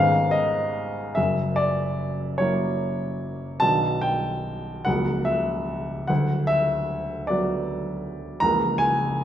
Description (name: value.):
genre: classical, romantic nocturne for solo piano.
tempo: 47-54 BPM (dotted quarters).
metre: 12/8.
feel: rubato.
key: B minor.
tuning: A4 = 440 Hz.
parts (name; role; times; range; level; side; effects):
warm baby grand piano; solo; 0.0-9.2 s; B0 to A#5; -22 LUFS; equal; none.
room: wet recital hall reverb, RT60 1.8 s.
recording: recorded in a church or concert hall.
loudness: -22 LUFS.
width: side -10 dB against mid.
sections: 0.0-9.2 A section.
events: none.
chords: 0.0 C#5/G#; 1.2 F#7; 3.6 Bm; 4.9 F#7/C#; 6.1 Bm/D; 8.4 A#dim/C#.